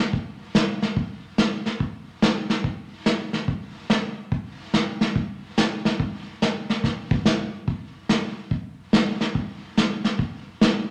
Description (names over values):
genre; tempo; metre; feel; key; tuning
country; 143 BPM; 4/4; swing 65% on 8ths; none; none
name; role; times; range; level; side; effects
vintage brush drum kit; drums; 0.1-10.9 s; brushed snare drum, hi-hat, kick drum, snare drum; -24 LUFS; equal; none
room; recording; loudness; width
wet large studio reverb, RT60 0.9 s; none; -25 LUFS; mono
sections
0.0-1.8 A section; 1.8-10.9 B section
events
none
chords
none